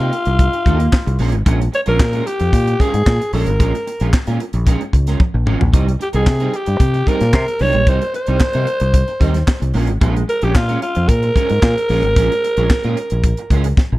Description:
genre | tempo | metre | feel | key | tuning
disco | 112 BPM | 4/4 | straight | Bb dorian | A4 = 440 Hz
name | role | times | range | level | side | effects
breathy alto saxophone | melody | 0.0-13.8 s | F4 to Db5 | -19 LUFS | equal | none
electric guitar at the edge of break-up | accompaniment | 0.0-14.0 s | G3 to Bb4 | -24 LUFS | right 4 dB | ensemble chorus
fingered electric bass | bass | 0.0-14.0 s | Ab1 to C3 | -17 LUFS | equal | none
tight funk drum kit | drums | 0.1-13.9 s | handclaps, hi-hat, kick drum, snare drum, toms | -15 LUFS | equal | none
room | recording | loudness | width
studio reverb | dark, warm production | -13 LUFS | side -18 dB against mid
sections
0.0-14.0 A section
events
drum fill 5.2-5.7, 13.8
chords
0.0 Cm7; 1.2 Bbm7; 5.7 Cm7; 9.7 Bbm7

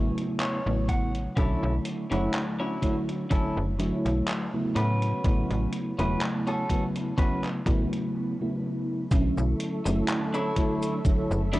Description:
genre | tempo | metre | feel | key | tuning
vaporwave | 62 BPM | 4/4 | swing 54% on 16ths | unclear | A4 = 437 Hz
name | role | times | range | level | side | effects
mellow FM electric piano | accompaniment | 0.0-11.6 s | C#3 to C#5 | -28 LUFS | equal | ensemble chorus, analog delay
slap-like FM bass | bass | 0.0-11.6 s | E1 to A2 | -28 LUFS | equal | none
detuned 8-bit digital drum machine | drums | 0.2-11.6 s | cabasa, handclaps, hi-hat | -36 LUFS | equal | none
clean electric guitar | riff | 0.4-11.6 s | C#4 to F#5 | -33 LUFS | equal | wide subtle chorus, vintage 12-bit sampler grit, analog delay
electronic kick drum | drums | 0.9-11.3 s | none | -25 LUFS | equal | none
soft string machine | sustained chords | 9.4-11.6 s | A4 to C#6 | -36 LUFS | right 1 dB | phaser, ensemble chorus, vintage 12-bit sampler grit
room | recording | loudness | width
light reverb | worn, warbling old tape, cassette tape, warbly pitch drift, nothing above 10.9 kHz | -24 LUFS | side -18 dB against mid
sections
0.0-9.1 A section; 9.1-11.6 B section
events
clean electric guitar fill 0.0-1.4; break 8.1-9.1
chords
0.0 A69; 1.4 Bm11; 4.8 A69; 9.1 Bm11

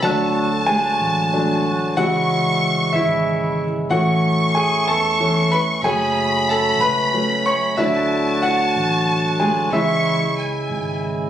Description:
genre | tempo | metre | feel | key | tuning
six-eight pop ballad | 62 BPM (dotted quarters) | 6/8 | straight | unclear | A4 = 437 Hz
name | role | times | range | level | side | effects
warm symphonic violin section | second line | 0.0-11.3 s | G#5 to C#6 | -22 LUFS | equal | none
clear grand piano | accompaniment | 0.0-11.0 s | E3 to C#6 | -19 LUFS | equal | none
percussive tonewheel organ | sustained chords | 0.0-11.3 s | C#3 to F#4 | -24 LUFS | right 2 dB | slow rotary speaker
vintage muted fingered electric bass | bass | 0.0-11.3 s | F#1 to E2 | -27 LUFS | equal | none
room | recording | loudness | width
light reverb, small room ambience | recorded on a phone in the room, studio reverb, compression | -16 LUFS | side -10 dB against mid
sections
0.0-11.3 A section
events
grand piano solo 0.0-11.3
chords
0.0 D; 2.0 C#m; 3.9 A; 5.8 F#m; 7.8 D; 9.7 C#m

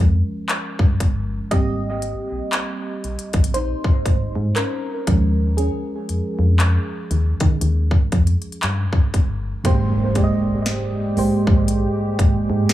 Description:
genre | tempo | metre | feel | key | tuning
contemporary R&B | 59 BPM | 4/4 | swing 58% on 16ths | Ab major | A4 = 440 Hz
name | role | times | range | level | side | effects
mellow FM electric piano | accompaniment | 0.0-12.7 s | Ab2 to Eb5 | -23 LUFS | right 2 dB | chorus, analog delay
solid FM bass | bass | 0.0-12.7 s | G1 to Eb3 | -20 LUFS | equal | none
trap drum kit | drums | 0.5-12.7 s | handclaps, hi-hat, kick drum, snare drum | -19 LUFS | equal | none
deep dark ambient pad | sustained chords | 10.4-12.7 s | Ab3 to G4 | -27 LUFS | equal | chorus, built-in reverb, sidechain pumping
impact | sound effects | 9.6-12.7 s | none | -31 LUFS | left 2 dB | none
room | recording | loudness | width
light reverb | echo-heavy mix, small room ambience | -17 LUFS | side -14 dB against mid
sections
0.0-9.6 A section; 9.6-12.7 B section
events
FM electric piano solo 0.0-9.6; impact 9.6-12.7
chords
0.0 Eb9sus4 (rootless); 1.5 Abmaj9; 5.1 Eb9sus4; 9.6 Abmaj7

